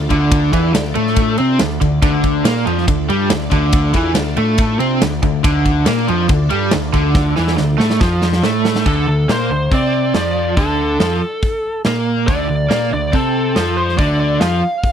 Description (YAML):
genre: classic rock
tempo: 140 BPM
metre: 4/4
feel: straight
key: D minor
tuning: A4 = 440 Hz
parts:
  - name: string machine, full ensemble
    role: sustained chords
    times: 0.0-8.8 s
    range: D4 to Eb5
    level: -28 LUFS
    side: equal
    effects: phaser, ensemble chorus
  - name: overdriven electric guitar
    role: riff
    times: 0.0-14.6 s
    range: D3 to C4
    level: -20 LUFS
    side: left 12 dB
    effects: none
  - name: overdriven electric guitar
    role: riff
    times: 0.0-14.6 s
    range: D3 to C4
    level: -19 LUFS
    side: right 11 dB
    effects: tremolo
  - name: growling picked electric bass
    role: bass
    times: 0.0-14.6 s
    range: D2 to C3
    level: -20 LUFS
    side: equal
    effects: overdrive
  - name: big rock drum kit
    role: drums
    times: 0.1-14.9 s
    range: crash cymbal, hi-hat, kick drum, ride cymbal, snare drum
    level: -18 LUFS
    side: equal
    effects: none
  - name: biting lead guitar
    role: melody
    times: 8.9-14.9 s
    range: A4 to F5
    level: -20 LUFS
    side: equal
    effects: overdrive
room: little or no reverb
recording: dry, close 1970s-style studio recording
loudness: -13 LUFS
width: side -8 dB against mid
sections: 0.0-8.9 A section; 8.9-14.9 B section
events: drum fill 7.2-8.9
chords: 0.0 Dm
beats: | 0.33 0.75 1.18 1.61 | 2.03 2.46 2.89 3.31 | 3.74 4.17 4.59 5.02 | 5.45 5.87 6.30 6.73 | 7.15 7.58 8.01 8.44 | 8.86 9.29 9.72 10.14 | 10.57 11.00 11.43 11.85 | 12.28 12.71 13.13 13.56 | 13.99 14.42 14.84